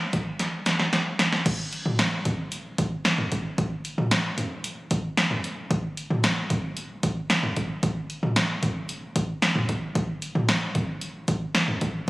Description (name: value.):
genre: pop.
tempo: 113 BPM.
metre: 4/4.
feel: straight.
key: none.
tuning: none.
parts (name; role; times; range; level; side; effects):
punchy analog drum machine; drums; 0.1-12.1 s; crash cymbal, hi-hat, kick drum, snare drum, toms; -24 LUFS; equal; none.
room: wet lush hall reverb, RT60 2.2 s.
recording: recorded on a phone in the room, studio ambience.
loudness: -23 LUFS.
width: side -20 dB against mid.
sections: 0.0-1.5 A section; 1.5-12.1 B section.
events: drum fill 0.4-1.5.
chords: none.